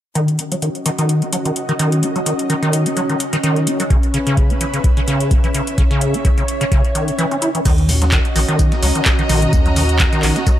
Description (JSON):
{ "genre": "acid house", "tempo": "128 BPM", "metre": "4/4", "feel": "swing 55% on 16ths", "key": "Eb phrygian", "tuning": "A4 = 440 Hz", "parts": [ { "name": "string machine, full ensemble", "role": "sustained chords", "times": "0.2-10.6 s", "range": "Db4 to Fb5", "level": "-23 LUFS", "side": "equal", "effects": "ensemble chorus, sidechain pumping" }, { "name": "acid bass, square", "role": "riff", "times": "0.2-10.5 s", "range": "Db3 to Gb4", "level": "-19 LUFS", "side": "equal", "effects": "overdrive, lush chorus, sidechain pumping, analog delay" }, { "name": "electro analog drum machine", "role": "drums", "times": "0.2-10.6 s", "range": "crash cymbal, handclaps, hi-hat, toms", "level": "-22 LUFS", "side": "left 1 dB", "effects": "overdrive" }, { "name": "electronic kick drum", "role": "drums", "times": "3.9-10.6 s", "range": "none", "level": "-16 LUFS", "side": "equal", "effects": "overdrive" }, { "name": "round analog bass", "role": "bass", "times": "7.7-10.3 s", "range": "Bb1 to Eb2", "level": "-17 LUFS", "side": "equal", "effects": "sidechain pumping" }, { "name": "electronic tambourine and snare drum", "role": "drums", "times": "7.7-10.6 s", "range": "none", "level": "-28 LUFS", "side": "equal", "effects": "high-pass filter on perc, high-pass filter on snare, high-pass filter on room" }, { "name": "rich studio string section", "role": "texture", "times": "7.7-10.6 s", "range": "Db4 to Bb5", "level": "-23 LUFS", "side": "right 1 dB", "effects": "sidechain pumping" } ], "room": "light reverb, digital ambience", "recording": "none", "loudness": "-14 LUFS", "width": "side -12 dB against mid", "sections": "0.2-7.7 A section; 7.7-10.6 B section", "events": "filter sweep on acid bass 0.2-7.7, 7.7-10.6; kick drops out 7.2-7.7", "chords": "0.2 Ebm7; 3.9 Dbm7; 7.7 Ebm7", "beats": "| 0.15 0.62 1.09 1.56 | 2.03 2.50 2.97 3.44 | 3.90 4.37 4.84 5.31 | 5.78 6.25 6.72 7.18 | 7.65 8.12 8.59 9.06 | 9.53 10.00 10.47" }